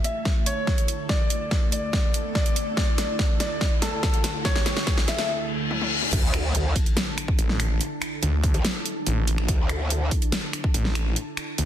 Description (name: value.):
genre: heavy wobble dubstep.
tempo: 143 BPM.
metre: 4/4.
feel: half-time.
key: unclear.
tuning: A4 = 442 Hz.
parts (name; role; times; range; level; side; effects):
clear concert grand piano; melody; 0.0-5.3 s; A4 to E5; -30 LUFS; left 1 dB; vintage 12-bit sampler grit, tape echo.
evolving wavetable pad; sustained chords; 0.0-11.7 s; D2 to A5; -33 LUFS; right 1 dB; ensemble chorus, built-in reverb, phaser, sidechain pumping.
dubstep drum kit; drums; 0.0-11.7 s; crash cymbal, finger snaps, hi-hat, snare drum, toms; -28 LUFS; equal; high-pass filter on hats, high-pass filter on toms, soft clipping on snare, high-pass filter on snare, high-pass filter on cymbals.
riser, reverse cymbal and impact; sound effects; 2.3-7.8 s; none; -32 LUFS; left 2 dB; none.
electronic kick drum; drums; 0.3-10.7 s; none; -24 LUFS; equal; overdrive.
growl bass; bass; 6.1-10.1 s; D2; -24 LUFS; equal; chorus, overdrive.
snarling distorted saw bass; bass; 7.4-11.7 s; A1 to D2; -23 LUFS; equal; distortion, overdrive.
room: light reverb.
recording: dense, heavily limited modern master.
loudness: -22 LUFS.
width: side -11 dB against mid.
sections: 0.0-6.1 A section; 6.1-11.7 B section.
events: build-up 0.0-6.1; drum fill 0.0-5.3, 5.7-6.1; reverse cymbal 5.3-6.1; drop 6.1-11.7; impact 6.1-7.8.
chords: 0.0 Dsus2.